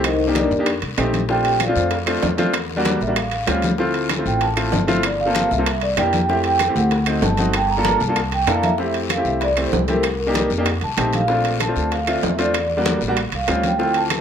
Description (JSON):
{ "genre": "Afro-Cuban jazz", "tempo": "192 BPM", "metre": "4/4", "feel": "straight", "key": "F major", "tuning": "A4 = 441 Hz", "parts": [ { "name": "warm concert grand piano", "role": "accompaniment", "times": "0.0-14.2 s", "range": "G3 to A4", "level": "-22 LUFS", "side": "left 1 dB", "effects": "none" }, { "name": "upright bass", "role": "bass", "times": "0.0-14.2 s", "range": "G1 to F2", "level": "-25 LUFS", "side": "equal", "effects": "none" }, { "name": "bongos", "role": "percussion", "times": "0.0-14.2 s", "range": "none", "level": "-30 LUFS", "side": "left 6 dB", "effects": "none" }, { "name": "claves", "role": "percussion", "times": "0.0-14.2 s", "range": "none", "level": "-31 LUFS", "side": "right 6 dB", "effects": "none" }, { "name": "congas", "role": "percussion", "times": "0.0-14.2 s", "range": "none", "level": "-28 LUFS", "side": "left 2 dB", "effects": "none" }, { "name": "timbales", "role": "percussion", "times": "0.0-14.2 s", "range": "none", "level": "-27 LUFS", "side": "right 7 dB", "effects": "none" }, { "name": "vibraphone with soft mallets", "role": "melody", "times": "0.1-14.2 s", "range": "D4 to Bb5", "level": "-22 LUFS", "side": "right 1 dB", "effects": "plate reverb" }, { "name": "guiro", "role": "percussion", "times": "0.1-14.2 s", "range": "none", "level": "-34 LUFS", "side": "left 9 dB", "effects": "none" } ], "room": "moderate club reverb, RT60 0.8 s", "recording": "none", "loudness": "-17 LUFS", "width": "side -8 dB against mid", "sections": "0.0-8.8 A section; 8.8-14.2 B section", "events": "vibraphone solo 0.0-8.8", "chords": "0.0 Cm9; 0.7 F7; 1.3 Bbmaj9; 2.5 Em7b5; 3.2 A7alt; 3.8 Dm7; 5.0 Gm11; 5.7 C9; 6.3 Fmaj7; 6.9 D7b9; 7.5 Gm7; 8.2 C13; 8.8 Fmaj7; 10.0 Cm9; 10.7 F7; 11.3 Bbmaj9; 12.5 Em7b5; 13.2 A7alt" }